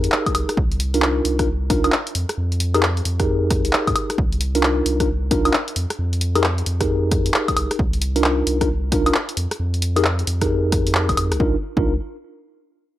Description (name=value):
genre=UK garage, two-step garage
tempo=133 BPM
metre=4/4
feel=swing 63% on 16ths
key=C minor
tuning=A4 = 440 Hz
part: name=mellow tine electric piano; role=stabs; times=0.0-11.9 s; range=D4 to Bb4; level=-22 LUFS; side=left 1 dB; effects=medium stereo tremolo, analog delay
part: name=saturated sub bass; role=bass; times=0.0-12.0 s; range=F1 to Ab2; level=-22 LUFS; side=equal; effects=none
part: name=punchy analog drum machine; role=drums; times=0.0-11.4 s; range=handclaps, hi-hat, rim click, woodblock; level=-22 LUFS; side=equal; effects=none
part: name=electronic kick drum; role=drums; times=0.3-11.8 s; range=none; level=-23 LUFS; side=equal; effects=none
room=digital ambience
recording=dry, gritty hardware recording, transformer saturation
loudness=-17 LUFS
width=side -14 dB against mid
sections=0.0-11.4 A section; 11.4-13.0 B section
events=drop 0.0-11.4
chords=0.0 Fm11; 0.6 Cm11; 2.2 Fm11; 4.2 Cm11; 5.8 Fm11; 7.8 Cm11; 9.4 Fm11; 11.4 Cm11